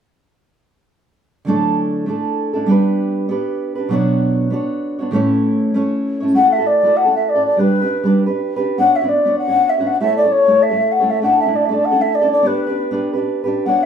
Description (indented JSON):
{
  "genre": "celtic folk, Celtic reel",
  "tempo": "197 BPM",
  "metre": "4/4",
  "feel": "swing 55% on 8ths",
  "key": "D major",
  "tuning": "A4 = 440 Hz",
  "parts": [
    { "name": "fingerpicked steel-string acoustic guitar", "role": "accompaniment", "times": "1.4-13.9 s", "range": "A2 to C#5", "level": "-17 LUFS", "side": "right 2 dB", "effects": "none" },
    { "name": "mellow baroque flute", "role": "melody", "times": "6.4-13.9 s", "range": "B4 to F#5", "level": "-14 LUFS", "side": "left 2 dB", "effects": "none" }
  ],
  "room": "wet small room reverb, RT60 0.5 s",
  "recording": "heard from further back in the room",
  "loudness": "-14 LUFS",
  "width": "side -8 dB against mid",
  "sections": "1.5-6.4 A section; 6.4-13.9 B section",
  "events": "none",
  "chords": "1.5 Dadd9; 2.7 G; 3.9 Bmadd9; 5.1 A; 6.4 Dadd9; 7.6 G; 8.8 Bmadd9; 10.0 A; 11.2 Dsus2; 12.4 G"
}